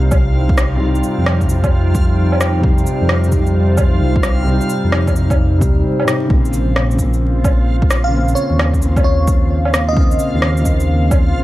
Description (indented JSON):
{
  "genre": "future garage",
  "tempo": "131 BPM",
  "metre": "4/4",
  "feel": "swing 64% on 16ths",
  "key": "unclear",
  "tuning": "A4 = 440 Hz",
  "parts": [
    { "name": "felt-muted upright piano", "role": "accompaniment", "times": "0.0-11.4 s", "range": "C3 to Eb4", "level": "-21 LUFS", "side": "left 1 dB", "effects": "vintage 12-bit sampler grit, sidechain pumping, tape echo" },
    { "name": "warbly tape-like pad", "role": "sustained chords", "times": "0.0-11.4 s", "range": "Bb2 to G5", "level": "-23 LUFS", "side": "equal", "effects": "chorus, built-in reverb, vintage 12-bit sampler grit, sidechain pumping" },
    { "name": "dark detuned saw bass", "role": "bass", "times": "0.0-11.4 s", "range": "Bb1 to F2", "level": "-16 LUFS", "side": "equal", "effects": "sidechain pumping" },
    { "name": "backwards swelling texture", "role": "texture", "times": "0.0-11.4 s", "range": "F4 to F5", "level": "-29 LUFS", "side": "right 2 dB", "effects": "built-in reverb" },
    { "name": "electronic kick drum", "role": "drums", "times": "0.1-11.2 s", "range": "none", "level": "-16 LUFS", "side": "equal", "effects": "none" },
    { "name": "electronic shaker, woodblock and rim click", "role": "drums", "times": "0.1-11.2 s", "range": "none", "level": "-20 LUFS", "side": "equal", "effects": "overdrive" },
    { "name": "bell-like FM electric piano", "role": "melody", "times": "8.0-10.3 s", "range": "Db5 to F5", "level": "-22 LUFS", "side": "right 1 dB", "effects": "chorus, phaser, analog delay" }
  ],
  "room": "light reverb, digital ambience",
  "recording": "vinyl crackle",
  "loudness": "-12 LUFS",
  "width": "side -16 dB against mid",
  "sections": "0.0-11.4 A section",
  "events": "none",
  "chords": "0.0 Cm; 6.3 Bbmadd9",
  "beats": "0.35 | 0.81 1.26 1.72 2.18 | 2.64 3.10 3.55 4.01 | 4.47 4.93 5.38 5.84 | 6.30 6.76 7.22 7.67 | 8.13 8.59 9.05 9.51 | 9.96 10.42 10.88 11.34"
}